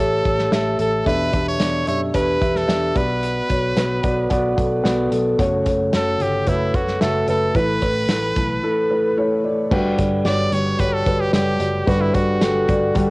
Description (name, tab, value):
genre	piano-driven pop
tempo	111 BPM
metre	4/4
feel	straight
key	unclear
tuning	A4 = 440 Hz
part	brilliant trumpet	melody	0.0-13.1 s	E4 to D5	-24 LUFS	right 1 dB	cassette tape
part	felt-muted upright piano	accompaniment	0.0-13.1 s	G2 to E5	-19 LUFS	equal	cassette tape
part	vintage muted picked electric bass	bass	0.0-13.1 s	F#1 to F#2	-26 LUFS	equal	none
part	loose indie drum kit	drums	0.3-13.1 s	crash cymbal, hi-hat, kick drum, snare drum	-23 LUFS	equal	cassette tape
room	light reverb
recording	home recording on cassette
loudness	-17 LUFS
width	side -23 dB against mid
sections	0.0-9.7 A section; 9.7-13.1 B section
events	none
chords	0.0 A7; 1.1 Em7; 3.0 Bm; 5.4 F#m; 7.6 Asus2; 9.7 Gmaj7